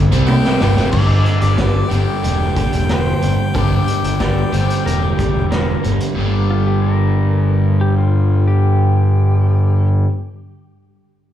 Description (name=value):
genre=classic rock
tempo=92 BPM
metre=4/4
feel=straight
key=G minor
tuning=A4 = 440 Hz
part: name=crunchy overdriven guitar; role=riff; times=0.0-10.1 s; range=F2 to C4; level=-24 LUFS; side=left 8 dB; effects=none
part: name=crunchy overdriven guitar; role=riff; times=0.0-10.1 s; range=F2 to C4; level=-19 LUFS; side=right 4 dB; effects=none
part: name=fuzz picked electric bass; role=bass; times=0.0-10.0 s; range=E1 to C2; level=-16 LUFS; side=left 1 dB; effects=overdrive
part: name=raw garage drum kit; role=drums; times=0.1-6.2 s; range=crash cymbal, hi-hat, kick drum, snare drum, toms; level=-20 LUFS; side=equal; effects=none
part: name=bright harmonica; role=melody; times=0.3-5.5 s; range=D5 to G5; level=-25 LUFS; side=left 3 dB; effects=slapback echo
part: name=picked steel-string acoustic guitar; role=accompaniment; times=0.9-10.2 s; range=G2 to G4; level=-30 LUFS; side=left 3 dB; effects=none
part: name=clean lap steel guitar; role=second line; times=2.9-9.9 s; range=F4 to D5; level=-26 LUFS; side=left 4 dB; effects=slapback echo, analog delay
room=small room ambience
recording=live gig heard through the venue's PA, club reverb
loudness=-13 LUFS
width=side -11 dB against mid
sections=0.9-6.2 A section; 6.2-8.8 B section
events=drum fill 0.3-0.9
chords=0.0 G5; 0.9 Gm